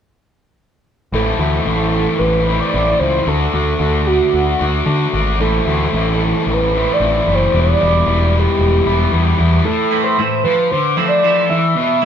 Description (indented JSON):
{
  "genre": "rock",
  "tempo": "113 BPM",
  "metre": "4/4",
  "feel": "straight",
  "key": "A dorian",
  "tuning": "A4 = 440 Hz",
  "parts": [
    { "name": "overdriven synth lead", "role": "melody", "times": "1.1-12.1 s", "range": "F#4 to E5", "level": "-18 LUFS", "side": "right 1 dB", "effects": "chorus" },
    { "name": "fuzz guitar", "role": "riff", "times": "1.1-12.0 s", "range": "A2 to F#4", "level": "-17 LUFS", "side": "left 2 dB", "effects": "distortion" },
    { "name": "growling picked electric bass", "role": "bass", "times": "1.1-9.6 s", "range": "E1 to D3", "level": "-17 LUFS", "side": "equal", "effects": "overdrive" },
    { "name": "raw garage guitar", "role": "riff", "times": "9.9-12.1 s", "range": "E3 to E4", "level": "-20 LUFS", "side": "right 5 dB", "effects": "overdrive" }
  ],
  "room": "wet stone room reverb, RT60 1.4 s",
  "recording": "band playing live in one room",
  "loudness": "-13 LUFS",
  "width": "side -8 dB against mid",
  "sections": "1.1-9.7 A section; 9.7-12.1 B section",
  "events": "none",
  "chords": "1.1 Am; 3.3 D; 5.4 Am; 7.5 Em7; 9.7 Am",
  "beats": "| 1.12 1.66 2.19 2.73 | 3.27 3.80 4.33 4.87 | 5.40 5.94 6.47 7.00 | 7.54 8.07 8.60 9.13 | 9.66 10.18 10.71 11.24 | 11.77"
}